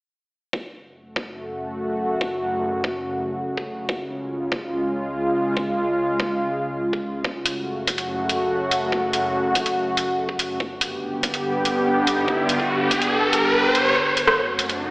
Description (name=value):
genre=heavy wobble dubstep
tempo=143 BPM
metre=4/4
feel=half-time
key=F# phrygian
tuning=A4 = 437 Hz
part: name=lush unison pad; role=sustained chords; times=1.3-14.9 s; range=C#2 to G4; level=-22 LUFS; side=equal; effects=chorus, sidechain pumping
part: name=electronic kick drum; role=drums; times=0.5-13.0 s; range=none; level=-25 LUFS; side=equal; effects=high-pass filter on kick
part: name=dubstep drum kit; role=drums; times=7.5-14.8 s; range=hi-hat, rim click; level=-21 LUFS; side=equal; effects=none
part: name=riser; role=sound effects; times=11.6-14.9 s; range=none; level=-21 LUFS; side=equal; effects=none
room=moderate lush hall reverb, RT60 1.6 s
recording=played on a big sound system in a bare room, stone room reverb, AM radio sound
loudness=-20 LUFS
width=side -24 dB against mid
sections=0.5-14.0 A section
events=filter sweep on analog synth pad 0.5-14.0; riser 11.6-14.0, 14.0-14.9; kick drops out 13.5-14.0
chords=0.5 F#m; 3.9 C#; 7.2 F#m; 10.6 G; 14.0 F#m